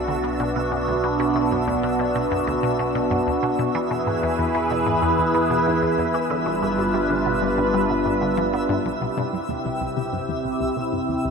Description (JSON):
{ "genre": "ambient, sequencer-driven space music", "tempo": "94 BPM", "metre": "4/4", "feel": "straight", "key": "unclear", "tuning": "A4 = 438 Hz", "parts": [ { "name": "phased analog pad", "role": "sustained chords", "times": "0.0-11.3 s", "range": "C3 to B4", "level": "-22 LUFS", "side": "equal", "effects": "phaser, chorus" }, { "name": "vibraphone with soft mallets", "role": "arpeggios", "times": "0.0-8.9 s", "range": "B3 to E5", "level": "-27 LUFS", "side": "right 1 dB", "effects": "auto-pan, ping-pong delay" }, { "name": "fat analog bass", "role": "bass", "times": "0.0-11.3 s", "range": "G1 to E2", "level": "-34 LUFS", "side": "equal", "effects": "none" }, { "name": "twinkling granular texture", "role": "texture", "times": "0.0-11.3 s", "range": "E5", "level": "-32 LUFS", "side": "right 1 dB", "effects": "built-in reverb" }, { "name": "resonant blip pluck", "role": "riff", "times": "0.1-11.3 s", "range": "C2 to B3", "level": "-28 LUFS", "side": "left 1 dB", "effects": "phaser, ping-pong delay" } ], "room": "wet huge ambient reverb, RT60 8.4 s", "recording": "none", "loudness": "-20 LUFS", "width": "side -5 dB against mid", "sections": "0.0-8.9 A section; 8.9-11.3 B section", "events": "filter sweep on synth arpeggio sound 8.9-11.3", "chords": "0.0 Bm; 3.7 E; 6.3 G7; 8.9 C" }